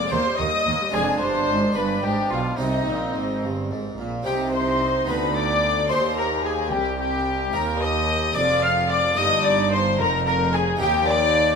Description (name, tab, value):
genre	classical, baroque-style concerto movement with solo episodes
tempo	73 BPM (dotted quarters)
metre	6/8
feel	straight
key	C minor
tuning	A4 = 442 Hz
part	dark violin	melody	0.0-11.6 s	Eb4 to F5	-25 LUFS	left 2 dB	none
part	warm chamber violin section	melody	0.0-11.6 s	Eb5 to F6	-26 LUFS	left 4 dB	none
part	rich chamber violin section	second line	0.0-11.6 s	Eb4 to F5	-26 LUFS	left 3 dB	none
part	harpsichord	accompaniment	0.0-11.6 s	C2 to Ab4	-31 LUFS	right 2 dB	none
part	warm chamber viola section	accompaniment	0.0-11.6 s	G3 to G4	-31 LUFS	right 4 dB	none
part	rich chamber double bass section	bass	0.1-11.6 s	F1 to Eb2	-29 LUFS	right 4 dB	none
part	warm chamber cello section	bass	0.1-11.6 s	C2 to C3	-28 LUFS	right 2 dB	none
room	wet recital hall reverb, RT60 1.8 s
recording	none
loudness	-19 LUFS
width	side -5 dB against mid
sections	0.0-4.3 A section; 4.3-11.6 A section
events	none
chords	0.1 Eb; 0.9 Ddim/F; 1.8 G; 2.6 Cm; 5.1 Dm6; 5.9 Cm/Eb; 7.5 Eb; 8.4 Bb5/F; 9.2 Eb/G; 10.8 Eb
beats	0.11 | 0.93 1.76 | 2.59 3.43 | 4.26 5.08 | 5.91 6.73 | 7.55 8.37 | 9.19 10.00 | 10.81